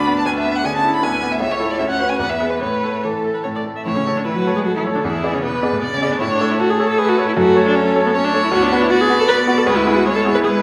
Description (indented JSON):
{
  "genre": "quick classical-period movement for piano quartet",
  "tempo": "154 BPM",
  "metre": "3/4",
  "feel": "rubato",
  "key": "A major",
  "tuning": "A4 = 440 Hz",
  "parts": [
    { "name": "rich violin", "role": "melody", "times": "0.0-10.6 s", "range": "G#4 to B5", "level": "-23 LUFS", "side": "equal", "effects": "none" },
    { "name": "warm cello", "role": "second line", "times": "0.0-10.6 s", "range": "A2 to D4", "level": "-27 LUFS", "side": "equal", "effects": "none" },
    { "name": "bright grand piano", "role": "accompaniment", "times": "0.0-10.6 s", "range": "C#2 to D5", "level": "-22 LUFS", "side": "equal", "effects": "none" },
    { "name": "rich viola", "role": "accompaniment", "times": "0.0-10.5 s", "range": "A3 to E5", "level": "-22 LUFS", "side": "equal", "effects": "none" }
  ],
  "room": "wet recital hall reverb, RT60 1.4 s",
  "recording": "none",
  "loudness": "-17 LUFS",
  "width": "mono",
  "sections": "0.0-3.9 A section; 3.9-10.6 B section",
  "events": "none",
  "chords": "0.3 E7/D; 1.4 A/C#; 1.8 Bm/D; 2.2 E; 2.6 A; 5.0 E7; 6.2 A; 7.4 F#m; 8.5 Bm/D"
}